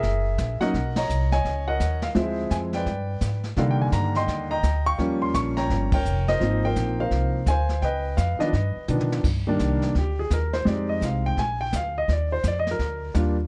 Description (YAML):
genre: jazz piano trio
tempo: 169 BPM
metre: 4/4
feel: swing 63% on 8ths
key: C minor from 9.2 s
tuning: A4 = 440 Hz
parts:
  - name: warm grand piano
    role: melody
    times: 0.0-13.4 s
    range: D3 to Db6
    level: -27 LUFS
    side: equal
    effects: none
  - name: upright bass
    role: bass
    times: 0.0-13.5 s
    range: F1 to C3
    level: -28 LUFS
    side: equal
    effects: none
  - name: jazz brush drum kit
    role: drums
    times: 0.0-13.5 s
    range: brushed snare drum, crash cymbal, hi-hat, kick drum, ride cymbal, snare drum, toms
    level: -32 LUFS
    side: equal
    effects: vintage 12-bit sampler grit
room: light reverb, small room ambience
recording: dark, warm production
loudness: -24 LUFS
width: mono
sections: 0.0-9.2 A section; 9.2-13.5 B section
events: band accent 0.9, 5.9; drum fill 8.9-9.2; grand piano solo 9.2-13.5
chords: 0.0 Gb13; 0.7 Bmaj9; 2.2 Dm7b5; 2.9 G; 3.6 Cm7; 5.0 Eb9; 6.4 Ab69; 7.8 Db9; 8.5 G7b13; 9.2 Cm9; 10.7 Fm9; 11.4 Bb; 12.1 Ebmaj7sus2